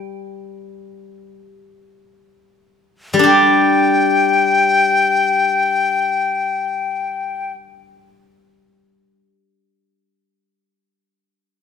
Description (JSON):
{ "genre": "chinese traditional, Chinese chamber ensemble", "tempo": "free time", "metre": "none", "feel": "none", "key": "unclear", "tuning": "A4 = 440 Hz", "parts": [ { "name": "steel-string zither", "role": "accompaniment", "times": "0.0-9.2 s", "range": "G3 to G4", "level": "-17 LUFS", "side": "left 2 dB", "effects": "none" }, { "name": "bright reedy dizi", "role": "melody", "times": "3.3-7.5 s", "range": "G5", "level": "-15 LUFS", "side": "left 3 dB", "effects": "none" } ], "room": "moderate recital hall reverb, RT60 1.5 s", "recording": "minimal, uncompressed stereo recording", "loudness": "-13 LUFS", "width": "side -7 dB against mid", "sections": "0.0-3.3 A section; 3.3-9.1 B section", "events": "slowing down 0.0-3.3", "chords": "none" }